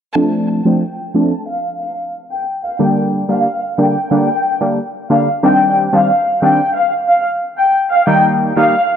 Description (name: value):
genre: dancehall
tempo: 91 BPM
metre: 4/4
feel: straight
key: unclear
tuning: A4 = 439 Hz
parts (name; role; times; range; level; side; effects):
- clear symphonic violin section; melody; 0.2-8.9 s; F5 to A5; -15 LUFS; left 1 dB; low-pass filter
- synth brass stab; accompaniment; 0.2-8.8 s; D3 to Eb4; -15 LUFS; right 1 dB; chorus, low-pass filter
room: light reverb, studio ambience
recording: dry, gritty hardware recording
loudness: -12 LUFS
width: side -8 dB against mid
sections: 0.2-9.0 A section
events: filter sweep 0.2-9.0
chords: 0.2 F6; 2.8 Gm; 5.4 Cmadd9; 8.1 Eb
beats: | 0.16 0.82 1.48 2.14 | 2.80 3.46 4.11 4.77 | 5.43 6.09 6.75 7.41 | 8.07 8.73